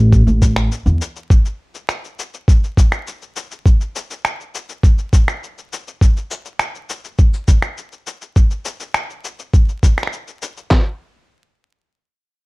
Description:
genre	folktronica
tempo	102 BPM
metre	4/4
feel	straight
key	unclear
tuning	A4 = 440 Hz
part	upright bass	bass	0.0-1.0 s	A1 to E2	-12 LUFS	equal	tube saturation
part	electronic cabasa and finger snaps	drums	0.1-10.7 s	none	-24 LUFS	left 1 dB	none
part	lo-fi sampler-style drum kit	drums	0.1-10.8 s	handclaps, kick drum, snare drum	-11 LUFS	equal	none
room	little or no reverb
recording	dark, warm production, vinyl crackle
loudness	-14 LUFS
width	side -25 dB against mid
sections	0.0-10.7 A section; 10.7-12.5 B section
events	none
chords	none

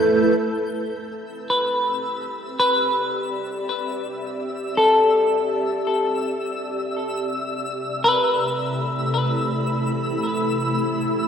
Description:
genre	ambient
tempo	55 BPM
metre	3/4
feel	straight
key	unclear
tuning	A4 = 440 Hz
part	ethereal airy pad	sustained chords	0.0-11.3 s	F2 to B5	-24 LUFS	right 1 dB	ensemble chorus, built-in reverb, tremolo, shimmer reverb
part	twinkling granular texture	texture	0.0-11.3 s	E6 to G6	-32 LUFS	left 2 dB	built-in reverb, lush chorus, shimmer reverb
part	semi-hollow electric guitar	arpeggios	1.5-11.0 s	A4 to B4	-21 LUFS	left 1 dB	lush chorus, shimmer reverb, ping-pong delay
room	wet lush hall reverb, RT60 2.8 s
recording	dreamy mix soaked in reverb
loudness	-20 LUFS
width	side -7 dB against mid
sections	0.4-11.3 A section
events	fade-in on ambient pad 0.4-11.3; fade-in on synth texture 0.4-11.3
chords	0.4 Cmaj9

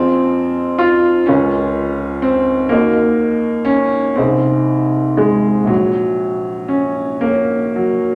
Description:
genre	classical, romantic nocturne for solo piano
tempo	34-43 BPM (dotted quarters)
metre	12/8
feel	rubato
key	unclear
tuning	A4 = 440 Hz
part	warm baby grand piano	solo	0.0-8.2 s	Bb1 to F5	-16 LUFS	equal	none
room	wet recital hall reverb, RT60 1.5 s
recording	none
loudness	-16 LUFS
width	mono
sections	0.0-8.2 A section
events	none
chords	0.0 Fm; 1.3 Bbm/Db; 2.7 Ebm; 4.2 Ab/C; 5.7 Gb/Bb

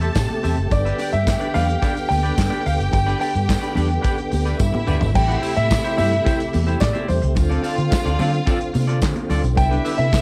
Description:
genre	disco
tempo	108 BPM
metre	4/4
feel	straight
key	unclear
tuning	A4 = 440 Hz
part	clear grand piano	melody	0.0-10.2 s	C5 to A5	-27 LUFS	equal	none
part	clear studio string section	second line	0.0-10.2 s	E4 to A5	-31 LUFS	equal	none
part	semi-hollow electric guitar	accompaniment	0.0-10.2 s	C4 to G5	-30 LUFS	equal	lush chorus
part	tonewheel organ	sustained chords	0.0-10.2 s	C3 to G4	-30 LUFS	equal	overdrive, chorus vibrato, slow rotary speaker
part	vintage muted fingered electric bass	bass	0.0-10.2 s	F#1 to D3	-23 LUFS	equal	tube saturation
part	modern studio drum kit	drums	0.0-10.2 s	crash cymbal, handclaps, hi-hat, kick drum, snare drum, toms	-26 LUFS	equal	vintage 12-bit sampler grit
part	tambourine	percussion	0.0-10.2 s	none	-43 LUFS	equal	none
part	congas	percussion	0.2-10.1 s	none	-33 LUFS	equal	none
room	studio reverb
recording	none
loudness	-20 LUFS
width	mono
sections	0.0-5.2 A section; 5.2-10.2 B section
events	drum fill 4.6-5.2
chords	0.0 Am7; 0.7 G; 5.2 Am7; 7.4 Dm7; 9.6 Cmaj9

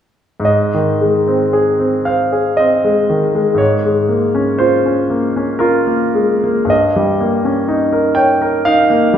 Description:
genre	classical, romantic nocturne for solo piano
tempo	52-64 BPM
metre	3/4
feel	rubato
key	Ab major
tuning	A4 = 440 Hz
part	clear concert grand piano	solo	0.4-9.2 s	G2 to G5	-12 LUFS	equal	none
room	wet recital hall reverb, RT60 1.5 s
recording	recorded in a church or concert hall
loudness	-12 LUFS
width	side -9 dB against mid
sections	0.5-9.2 A section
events	none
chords	0.5 Ab; 3.6 Bbm7/Ab; 6.7 Eb7/G

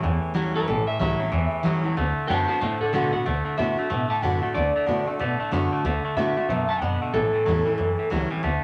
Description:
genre	rockabilly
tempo	186 BPM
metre	4/4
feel	swing 62% on 8ths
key	D major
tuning	A4 = 436 Hz
part	picked steel-string acoustic guitar	accompaniment	0.0-8.6 s	E2 to F#4	-29 LUFS	equal	none
part	twangy electric guitar	riff	0.0-8.6 s	A2 to B3	-31 LUFS	equal	none
part	upright bass	bass	0.0-8.6 s	A1 to B2	-31 LUFS	equal	none
part	electric guitar through a small old amp	melody	0.6-8.1 s	A4 to A5	-28 LUFS	equal	none
room	moderate club reverb, RT60 0.5 s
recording	none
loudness	-24 LUFS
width	mono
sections	0.0-3.3 A section; 3.3-8.6 B section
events	clean electric guitar solo 0.0-3.3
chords	0.0 A7; 2.0 D; 7.1 A7

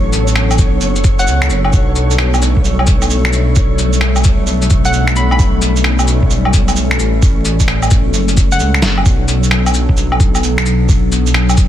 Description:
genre	future garage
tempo	131 BPM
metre	4/4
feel	swing 65% on 16ths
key	B minor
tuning	A4 = 440 Hz
part	warbly tape-like pad	sustained chords	0.0-11.7 s	F#3 to A4	-19 LUFS	left 1 dB	chorus, built-in reverb, sidechain pumping
part	dark detuned saw bass	bass	0.0-11.7 s	F#1 to C#2	-14 LUFS	equal	sidechain pumping
part	flickering grainy texture	texture	0.0-9.1 s	C#5	-27 LUFS	right 1 dB	built-in reverb
part	electronic cabasa, shaker, finger snaps, woodblock and snare drum	drums	0.1-11.7 s	none	-18 LUFS	equal	soft clipping on snare
part	electronic kick drum	drums	0.6-11.7 s	none	-12 LUFS	equal	none
part	hollow square pluck	melody	1.2-1.4, 4.9-5.4, 8.5-8.8 s	F#5 to B5	-21 LUFS	left 1 dB	chorus, dub echo
room	light reverb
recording	dense, heavily limited modern master, vinyl crackle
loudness	-10 LUFS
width	side -11 dB against mid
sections	0.0-9.1 A section; 9.1-11.7 A section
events	drum fill 8.8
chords	0.0 Bm7; 1.7 Gsus2/B; 9.1 Bm7

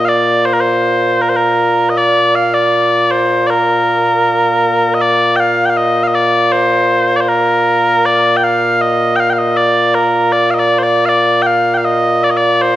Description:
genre	scottish traditional, Scottish pipe music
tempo	79 BPM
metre	2/4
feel	straight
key	Bb major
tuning	A4 = 440 Hz
part	mellow small bagpipes	solo	0.0-12.8 s	Bb2 to G5	-10 LUFS	equal	none
room	wet recital hall reverb, RT60 1.7 s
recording	none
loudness	-10 LUFS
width	side -14 dB against mid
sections	0.0-5.0 A section; 5.0-12.8 A section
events	none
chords	none

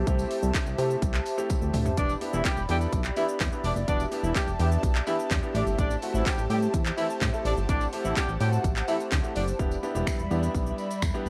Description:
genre	dance-pop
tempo	126 BPM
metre	4/4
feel	straight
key	unclear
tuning	A4 = 440 Hz
part	airy breathy pad	sustained chords	0.0-11.3 s	G3 to B5	-36 LUFS	equal	chorus, sidechain pumping
part	chorused synth bass	bass	0.0-11.3 s	E1 to C3	-30 LUFS	equal	sidechain pumping
part	clear baby grand piano	accompaniment	0.1-11.3 s	A3 to A4	-36 LUFS	equal	sidechain pumping
part	house drum kit	drums	0.1-11.3 s	finger snaps, handclaps, hi-hat, kick drum, shaker, snare drum, toms	-31 LUFS	equal	none
part	tambourine	percussion	0.2-11.3 s	none	-50 LUFS	equal	none
part	warm horn section	melody	2.0-9.4 s	E3 to D5	-34 LUFS	equal	sidechain pumping, tape echo
room	little or no reverb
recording	none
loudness	-27 LUFS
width	mono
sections	0.0-2.0 A section; 2.0-9.6 B section; 9.6-11.3 C section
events	drum fill 1.5-2.0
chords	0.0 Am7; 2.0 Em7; 5.5 Am7; 9.6 Em7

